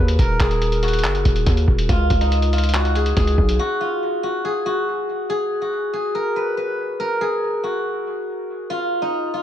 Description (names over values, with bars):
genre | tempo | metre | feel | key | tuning
hip hop, trap | 141 BPM | 4/4 | half-time | unclear | A4 = 440 Hz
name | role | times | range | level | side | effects
steel-string zither | melody | 0.0-9.4 s | D#4 to Cb5 | -21 LUFS | left 1 dB | low-pass filter, dub echo
hard-hitting 808-style bass | bass | 0.0-3.6 s | Eb1 to Eb2 | -19 LUFS | equal | none
lo-fi sampler-style drum kit | drums | 0.1-3.6 s | handclaps, hi-hat, kick drum | -20 LUFS | equal | none
room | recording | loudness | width
digital ambience | echo-heavy mix | -18 LUFS | side -10 dB against mid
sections
0.0-5.3 A section; 5.3-9.4 B section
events
break 3.6-5.3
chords
0.0 Ebm; 1.9 B69; 3.6 N.C.